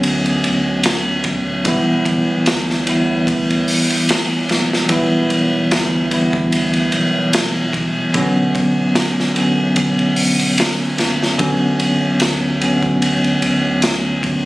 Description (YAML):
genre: trip hop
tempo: 74 BPM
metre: 4/4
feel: swing 55% on 16ths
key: B minor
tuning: A4 = 442 Hz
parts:
  - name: bell-like tine electric piano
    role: accompaniment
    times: 0.0-14.5 s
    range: D3 to E4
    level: -16 LUFS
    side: equal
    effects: harmonic tremolo, tape echo
  - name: round analog bass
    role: bass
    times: 0.0-14.5 s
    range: F#1 to D2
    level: -28 LUFS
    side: equal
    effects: tube saturation
  - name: crunchy breakbeat drum kit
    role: drums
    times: 0.0-14.4 s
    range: hi-hat, kick drum, ride cymbal, snare drum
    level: -18 LUFS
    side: equal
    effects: none
room: little or no reverb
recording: recorded on a phone in the room, studio reverb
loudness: -14 LUFS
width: side -19 dB against mid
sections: 0.0-14.5 A section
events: none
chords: 0.0 Bmadd9; 1.7 Em/B; 8.1 Bmadd9